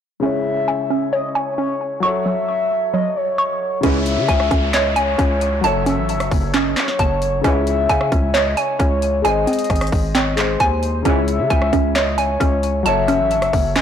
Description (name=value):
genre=hip hop, trap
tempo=133 BPM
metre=4/4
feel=half-time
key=C# harmonic minor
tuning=A4 = 440 Hz
part: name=gliding portamento lead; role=second line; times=0.2-13.8 s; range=B#4 to E5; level=-22 LUFS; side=left 2 dB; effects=chorus, ping-pong delay
part: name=dark concert grand piano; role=accompaniment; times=0.2-13.8 s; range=C#3 to D#5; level=-25 LUFS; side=left 5 dB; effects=low-pass filter
part: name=hollow square pluck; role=arpeggios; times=0.2-13.8 s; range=F#3 to C#6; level=-21 LUFS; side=right 3 dB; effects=chorus, low-pass filter, ping-pong delay
part: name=dark brass ensemble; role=stabs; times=3.8-4.0, 7.4-7.6, 11.1-11.2 s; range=C#2 to E3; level=-30 LUFS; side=equal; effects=none
part: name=growling 808-style bass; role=bass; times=3.8-13.8 s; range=F#1 to C#3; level=-22 LUFS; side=equal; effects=none
part: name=trap drum kit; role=drums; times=3.8-13.8 s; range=handclaps, hi-hat, kick drum, rim click, snare drum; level=-21 LUFS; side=equal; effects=overdrive
part: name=downlifter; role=sound effects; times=3.8-7.4 s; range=none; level=-29 LUFS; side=equal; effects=none
room=moderate lush hall reverb, RT60 2.0 s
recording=blown-out, overdriven recording, overdrive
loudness=-16 LUFS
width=side -8 dB against mid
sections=0.2-3.8 A section; 3.8-13.8 B section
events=filter sweep 0.2-3.8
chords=0.2 C#m; 2.0 F#m; 3.8 C#m; 5.6 F#m; 7.4 C#m; 9.2 G#; 11.1 C#m; 12.9 F#m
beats=| 0.23 0.68 1.13 1.58 | 2.03 2.48 2.93 3.38 | 3.83 4.29 4.74 5.19 | 5.64 6.09 6.54 6.99 | 7.44 7.89 8.35 8.80 | 9.25 9.70 10.15 10.60 | 11.05 11.50 11.96 12.41 | 12.86 13.31 13.76